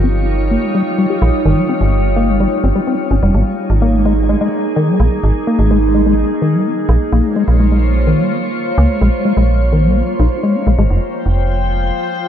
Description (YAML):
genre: IDM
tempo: 127 BPM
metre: 4/4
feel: straight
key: Ab major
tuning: A4 = 439 Hz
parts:
  - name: glassy FM pad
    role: sustained chords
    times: 0.0-12.3 s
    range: F3 to G5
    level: -18 LUFS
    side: right 1 dB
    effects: ensemble chorus, built-in reverb
  - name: deep acid bass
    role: arpeggios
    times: 0.0-10.8 s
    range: Eb3 to G4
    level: -17 LUFS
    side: left 3 dB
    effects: analog chorus, tape echo
  - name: metallic FM bass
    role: bass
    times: 0.0-11.9 s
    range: F1 to Db2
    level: -14 LUFS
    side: equal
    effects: none
room: light reverb, digital ambience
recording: echo-heavy mix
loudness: -12 LUFS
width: side -9 dB against mid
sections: 0.0-10.9 A section; 10.9-12.3 A section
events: none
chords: 0.0 Eb7/G; 3.3 Absus2; 7.1 Bbmadd9; 10.9 Fsus2